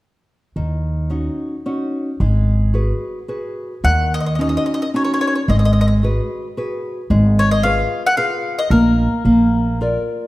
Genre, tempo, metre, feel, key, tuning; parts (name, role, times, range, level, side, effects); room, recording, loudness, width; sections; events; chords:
italian folk, Italian serenade; 111 BPM; 3/4; swing 53% on 8ths; Eb minor; A4 = 439 Hz
nylon-string guitar; accompaniment; 0.6-10.2 s; Eb3 to D5; -19 LUFS; equal
upright bass; bass; 0.6-10.0 s; Ab1 to Eb2; -17 LUFS; equal
mandolin; melody; 3.8-10.0 s; Bb4 to Gb5; -20 LUFS; left 2 dB
moderate recital hall reverb, RT60 1.6 s; -15 LUFS; side -18 dB against mid
0.6-3.8 A section; 3.8-10.3 B section
0.6 Ebm7; 2.2 Abm7; 3.8 Ebm7; 5.5 Abm7; 7.1 Fdim/Ab; 8.7 N.C.; 9.3 Bb